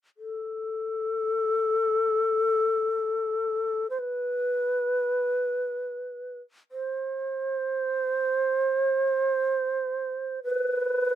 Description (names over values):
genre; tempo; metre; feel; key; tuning
japanese traditional, Japanese chamber music; free time; none; none; A hirajoshi; A4 = 440 Hz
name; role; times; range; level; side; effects
long shakuhachi; solo; 0.2-11.2 s; A4 to C5; -25 LUFS; equal; none
room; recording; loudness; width
little or no reverb; close, detailed microphones; -25 LUFS; side -11 dB against mid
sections
0.0-11.2 A section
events
none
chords
none